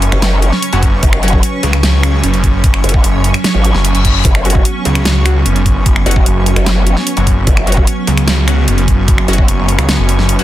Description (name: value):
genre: heavy wobble dubstep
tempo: 149 BPM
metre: 4/4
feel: half-time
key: unclear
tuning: A4 = 440 Hz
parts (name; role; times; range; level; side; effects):
- lush unison pad; sustained chords; 0.0-10.4 s; F#3 to B4; -20 LUFS; right 3 dB; chorus, sidechain pumping
- snarling distorted saw bass; bass; 0.0-10.4 s; F#1 to C#2; -13 LUFS; equal; distortion, overdrive
- dubstep drum kit; drums; 0.0-10.4 s; finger snaps, hi-hat, snare drum; -17 LUFS; right 1 dB; none
- granular cloud pad; texture; 0.0-10.4 s; C#4 to C#6; -21 LUFS; right 1 dB; built-in reverb, sidechain pumping
- growl bass; bass; 0.1-9.5 s; F#1 to G#1; -13 LUFS; equal; chorus, overdrive
- orchestra-hit-like synth stab; stabs; 0.7-1.3, 4.5-10.4 s; F#3 to F#4; -23 LUFS; left 2 dB; built-in reverb, tape echo
- electronic kick drum; drums; 0.8-9.5 s; none; -12 LUFS; equal; none
- reverse cymbal; sound effects; 3.7-4.2 s; none; -20 LUFS; left 7 dB; none
room: little or no reverb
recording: dense, heavily limited modern master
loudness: -9 LUFS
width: side -14 dB against mid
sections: 0.0-10.4 A section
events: reverse cymbal 3.7-4.2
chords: 0.0 F#5